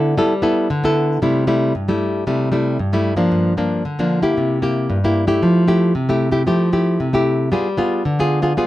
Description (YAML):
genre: samba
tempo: 114 BPM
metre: 4/4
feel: straight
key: C major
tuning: A4 = 440 Hz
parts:
  - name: nylon-string guitar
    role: solo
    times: 0.0-8.7 s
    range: G2 to A4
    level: -15 LUFS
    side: equal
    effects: none
room: moderate small room reverb, RT60 0.6 s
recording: dark, warm production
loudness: -15 LUFS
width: side -15 dB against mid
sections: 0.0-1.2 A section; 1.2-8.7 B section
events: none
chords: 0.0 G69; 1.2 C6; 3.3 Gm7; 4.4 C7; 5.4 Fmaj9; 7.5 G7b9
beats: 0.17 0.70 | 1.22 1.75 2.27 2.80 | 3.32 3.85 4.37 4.90 | 5.42 5.95 6.47 7.00 | 7.52 8.05 8.57